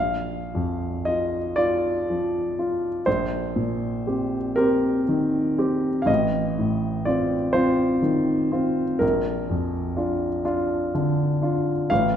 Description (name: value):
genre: classical, romantic nocturne for solo piano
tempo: 41 BPM (dotted quarters)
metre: 6/8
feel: uneven beats, rubato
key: Bb major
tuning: A4 = 440 Hz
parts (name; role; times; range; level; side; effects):
- warm baby grand piano; solo; 0.0-12.2 s; A1 to F5; -21 LUFS; equal; none
room: wet scoring stage reverb, RT60 1.6 s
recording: minimal, uncompressed stereo recording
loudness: -21 LUFS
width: side -9 dB against mid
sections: 0.0-12.2 A section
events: none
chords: 0.0 Bb; 3.1 Cm7/Bb; 6.1 F7/A; 9.0 Bb